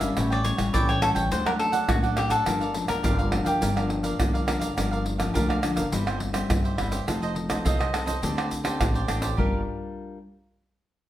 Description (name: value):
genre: samba and choro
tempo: 104 BPM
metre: 4/4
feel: straight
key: G minor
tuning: A4 = 440 Hz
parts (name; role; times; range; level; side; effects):
- cavaquinho; melody; 0.0-4.4 s; F#4 to E5; -27 LUFS; left 1 dB; none
- cavaquinho; accompaniment; 0.0-9.6 s; D4 to G5; -31 LUFS; right 3 dB; none
- nylon-string guitar; accompaniment; 0.0-10.2 s; G2 to Bb4; -30 LUFS; left 3 dB; none
- upright bass; bass; 0.0-9.6 s; F1 to G2; -30 LUFS; equal; none
- tube shaker, surdo, pandeiro and tamborim; percussion; 0.0-9.5 s; none; -27 LUFS; right 1 dB; none
room: wet studio reverb, RT60 0.8 s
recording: heard from further back in the room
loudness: -22 LUFS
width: side -13 dB against mid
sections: 0.0-4.8 A section; 4.8-9.4 B section; 9.4-11.1 C section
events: none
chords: 0.2 A7; 1.3 D; 2.5 Gm7; 5.9 C/G; 7.1 F7; 8.2 D7sus4; 9.4 Gm7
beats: | 0.17 0.74 1.32 1.89 | 2.47 3.04 3.62 4.20 | 4.77 5.35 5.92 6.50 | 7.08 7.65 8.23 8.80 | 9.38 9.95